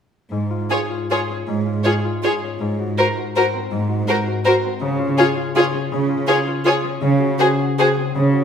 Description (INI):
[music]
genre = classical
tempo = 145-177 BPM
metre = 3/4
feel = rubato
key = Db major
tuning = A4 = 440 Hz
[part]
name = concert harp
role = arpeggios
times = 0.3-8.4 s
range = Ab2 to Bb4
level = -24 LUFS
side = left 7 dB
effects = none
[part]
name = warm chamber cello section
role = bass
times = 0.3-8.4 s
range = Ab2 to Db3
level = -22 LUFS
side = right 4 dB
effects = none
[part]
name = warm chamber violin section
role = melody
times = 0.7-7.9 s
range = C5 to Db5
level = -24 LUFS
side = left 2 dB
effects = none
[part]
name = warm chamber violin section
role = second line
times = 0.7-7.9 s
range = Ab4 to Bb4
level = -22 LUFS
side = left 2 dB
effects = none
[part]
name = warm chamber viola section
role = accompaniment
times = 0.7-7.9 s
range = F4 to Gb4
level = -22 LUFS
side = right 2 dB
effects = none
[sound]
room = moderate scoring stage reverb, RT60 1.5 s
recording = none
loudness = -17 LUFS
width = side -7 dB against mid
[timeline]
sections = 0.3-8.4 A section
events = none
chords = 0.3 Db/Ab; 2.6 Ab9; 4.8 Db; 7.0 Ab7/Db